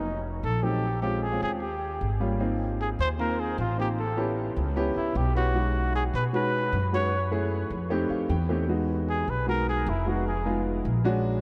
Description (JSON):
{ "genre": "Afro-Cuban jazz", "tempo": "153 BPM", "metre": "4/4", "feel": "straight", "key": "unclear", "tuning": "A4 = 441 Hz", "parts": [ { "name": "mellow trumpet", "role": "melody", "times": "0.0-10.6 s", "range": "D#4 to C#5", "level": "-33 LUFS", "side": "equal", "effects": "none" }, { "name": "warm upright piano", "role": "accompaniment", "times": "0.0-11.4 s", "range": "Gb3 to G5", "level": "-32 LUFS", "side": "equal", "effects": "none" }, { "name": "upright bass", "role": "bass", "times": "0.0-11.4 s", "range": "E#1 to B2", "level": "-31 LUFS", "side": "equal", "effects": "none" } ], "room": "moderate huge ambient reverb, RT60 7.9 s", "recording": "in a vast, echoing space", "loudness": "-27 LUFS", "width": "mono", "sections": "0.0-2.4 A section; 2.4-11.4 B section", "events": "upright piano fill 7.9-8.7", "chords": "0.0 F7b9; 0.8 A#m7; 1.6 D#9; 2.4 G#69; 4.0 A9; 5.5 B69; 7.1 F#m7; 7.9 F9; 8.7 Emaj9; 10.3 Fm7b5" }